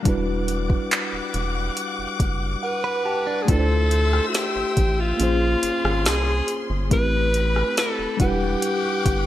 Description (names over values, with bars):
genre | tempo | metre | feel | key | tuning
contemporary R&B | 70 BPM | 4/4 | straight | unclear | A4 = 438 Hz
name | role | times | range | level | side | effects
mellow tine electric piano | accompaniment | 0.0-9.3 s | G3 to A5 | -27 LUFS | left 1 dB | medium stereo tremolo
warm studio string section | sustained chords | 0.0-9.3 s | G3 to E6 | -30 LUFS | left 3 dB | none
rubbery square bass | bass | 0.1-9.3 s | E1 to D2 | -24 LUFS | equal | none
smooth R&B drum kit | drums | 0.1-9.3 s | handclaps, hi-hat, kick drum, rim click, snare drum | -23 LUFS | equal | gated reverb
breathy alto saxophone | melody | 2.6-9.3 s | F4 to B4 | -24 LUFS | equal | none
direct-recorded clean electric guitar | arpeggios | 2.8-3.7 s | D4 to B4 | -29 LUFS | right 5 dB | spring reverb
room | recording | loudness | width
light reverb | bright 1980s-style digital production | -20 LUFS | side -13 dB against mid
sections
0.0-3.5 A section; 3.5-9.3 B section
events
tine electric piano fill 2.2-3.5; silent gap 2.6-3.5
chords
0.1 Em9; 3.5 Dm9; 5.2 Bbm9; 6.9 Am9; 8.2 Em9